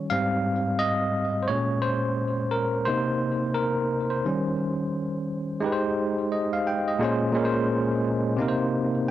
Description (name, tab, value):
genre	hip hop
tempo	87 BPM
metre	4/4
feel	swing 60% on 16ths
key	unclear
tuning	A4 = 440 Hz
part	barky tine electric piano	solo	0.0-9.1 s	Ab2 to G5	-23 LUFS	equal	medium stereo tremolo, low-pass filter, analog delay
room	moderate small room reverb, RT60 0.6 s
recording	dry, gritty hardware recording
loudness	-23 LUFS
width	side -13 dB against mid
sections	0.0-5.6 A section; 5.6-9.1 B section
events	tine electric piano solo 0.0-5.6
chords	0.1 Abmaj7; 1.5 Bbm9; 2.9 Cm7; 4.3 Eb6; 5.6 Abmaj7; 7.0 Bbm9; 8.4 Cm7